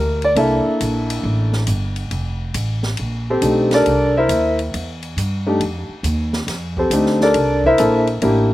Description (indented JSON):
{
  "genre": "jazz piano trio",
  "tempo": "138 BPM",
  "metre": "4/4",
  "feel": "swing 66% on 8ths",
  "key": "C mixolydian",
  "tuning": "A4 = 435 Hz",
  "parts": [
    { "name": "warm grand piano", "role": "melody", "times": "0.0-8.5 s", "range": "A3 to E5", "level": "-15 LUFS", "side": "equal", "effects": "slapback echo" },
    { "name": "upright bass", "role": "bass", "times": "0.0-8.5 s", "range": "F1 to G2", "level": "-21 LUFS", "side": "equal", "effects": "none" },
    { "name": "open jazz drum kit", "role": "drums", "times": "0.2-8.4 s", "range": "hi-hat, kick drum, ride cymbal, snare drum", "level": "-28 LUFS", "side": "equal", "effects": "none" }
  ],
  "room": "little or no reverb",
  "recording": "recorded outdoors, with no room sound",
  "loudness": "-16 LUFS",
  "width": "side -15 dB against mid",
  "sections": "0.0-8.5 A section",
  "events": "grand piano solo 0.0-8.5",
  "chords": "0.0 C13; 2.1 F13; 3.9 C13; 5.6 F13; 7.3 C13"
}